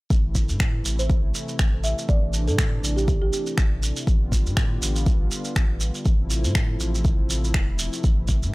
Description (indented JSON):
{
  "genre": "afro house",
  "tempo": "121 BPM",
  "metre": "4/4",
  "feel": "swing 56% on 16ths",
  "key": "A minor",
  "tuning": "A4 = 439 Hz",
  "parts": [
    { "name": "warm analog pad", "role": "sustained chords", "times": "0.1-8.5 s", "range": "C3 to F4", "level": "-32 LUFS", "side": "left 1 dB", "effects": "lush chorus, sidechain pumping" },
    { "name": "warm sub bass", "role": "bass", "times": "0.1-8.5 s", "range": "E1 to A2", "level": "-25 LUFS", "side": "equal", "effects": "sidechain pumping" },
    { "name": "electronic kick drum", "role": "drums", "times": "0.1-8.4 s", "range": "none", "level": "-21 LUFS", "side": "equal", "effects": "none" },
    { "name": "shekere", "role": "percussion", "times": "0.1-8.5 s", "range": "none", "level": "-31 LUFS", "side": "right 3 dB", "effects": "none" },
    { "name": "electronic finger snaps", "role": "drums", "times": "0.6-7.7 s", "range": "none", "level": "-29 LUFS", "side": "equal", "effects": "none" },
    { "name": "folk marimba with soft mallets", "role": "melody", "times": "1.0-3.4 s", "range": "G4 to E5", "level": "-30 LUFS", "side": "right 2 dB", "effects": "analog delay" }
  ],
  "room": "little or no reverb",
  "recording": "dry, gritty hardware recording, transformer saturation",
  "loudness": "-20 LUFS",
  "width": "side -22 dB against mid",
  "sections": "0.1-8.5 A section",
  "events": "none",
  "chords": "0.1 Am; 4.1 G7/A; 6.1 Fmaj7/A; 8.0 Am",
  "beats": "| 0.11 0.60 1.10 1.59 | 2.09 2.59 3.08 3.58 | 4.07 4.57 5.07 5.56 | 6.06 6.55 7.05 7.54 | 8.04 8.54"
}